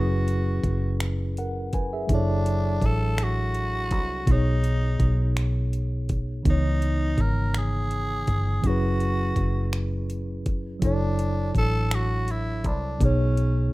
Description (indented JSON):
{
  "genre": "slow six-eight R&B",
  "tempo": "55 BPM (dotted quarters)",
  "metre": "6/8",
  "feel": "straight",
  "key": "unclear",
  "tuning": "A4 = 439 Hz",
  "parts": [
    { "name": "raspy tenor saxophone", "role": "melody", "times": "0.0-13.7 s", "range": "C#4 to A#4", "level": "-31 LUFS", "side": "equal", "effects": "none" },
    { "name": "tine electric piano", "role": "accompaniment", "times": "0.0-13.7 s", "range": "B2 to G#5", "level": "-29 LUFS", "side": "equal", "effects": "fast stereo tremolo" },
    { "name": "vintage muted fingered electric bass", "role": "bass", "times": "0.0-13.7 s", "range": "F#1 to C#2", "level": "-25 LUFS", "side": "equal", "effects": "none" },
    { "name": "smooth R&B drum kit", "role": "drums", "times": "0.3-13.5 s", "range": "finger snaps, hi-hat, kick drum", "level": "-26 LUFS", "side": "equal", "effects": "none" }
  ],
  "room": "digital ambience",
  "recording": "rough home demo mix",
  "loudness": "-22 LUFS",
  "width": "side -20 dB against mid",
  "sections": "0.0-13.7 A section",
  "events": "none",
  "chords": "0.0 F#7sus4; 2.1 Dmaj7/F#; 4.3 B69; 6.5 C#m9; 8.6 F#7sus4; 10.8 Dmaj7/F#; 13.0 B69",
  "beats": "1.00 | 2.09 3.19 | 4.28 5.37 | 6.46 7.55 | 8.64 9.73 | 10.82 11.91 | 13.00"
}